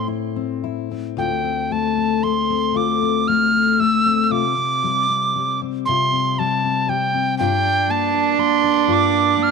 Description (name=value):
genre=celtic folk, Celtic slow air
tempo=52-60 BPM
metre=3/4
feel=rubato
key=D minor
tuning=A4 = 441 Hz
part: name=tin whistle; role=melody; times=0.0-9.5 s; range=G5 to F6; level=-19 LUFS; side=right 2 dB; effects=none
part: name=rich cello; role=second line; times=0.0-0.6, 7.4-9.5 s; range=C4 to D4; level=-19 LUFS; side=right 16 dB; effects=none
part: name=fingerpicked steel-string acoustic guitar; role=accompaniment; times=0.0-9.5 s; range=D2 to F4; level=-21 LUFS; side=left 11 dB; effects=none
room=light reverb, small room ambience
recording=1960s-style stereo with parts hard left and right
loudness=-17 LUFS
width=side -5 dB against mid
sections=0.0-1.2 A section; 1.2-9.5 B section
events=none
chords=0.0 Am; 1.2 Dm7; 4.3 Csus4; 7.4 Gm7